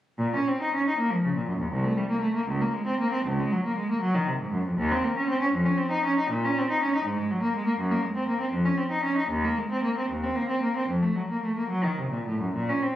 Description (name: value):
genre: classical, baroque-style suite movement for unaccompanied cello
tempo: 67-83 BPM (dotted quarters)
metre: 6/8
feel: rubato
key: Bb minor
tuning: A4 = 440 Hz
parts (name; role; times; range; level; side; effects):
- warm cello; solo; 0.2-12.9 s; C2 to Eb4; -24 LUFS; equal; none
room: moderate large studio reverb, RT60 1.4 s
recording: recorded on a phone in the room, studio reverb, compression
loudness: -24 LUFS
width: side -12 dB against mid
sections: 0.2-12.5 A section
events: none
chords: none